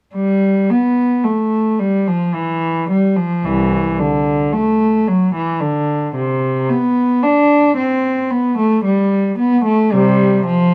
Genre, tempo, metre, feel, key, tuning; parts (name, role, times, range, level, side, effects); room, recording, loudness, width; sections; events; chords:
classical, baroque-style suite movement for unaccompanied cello; 56 BPM; 3/4; rubato; C major; A4 = 439 Hz
dark cello; solo; 0.2-10.7 s; C2 to D4; -16 LUFS; equal
light reverb; dark, warm production; -16 LUFS; mono
0.1-10.7 A section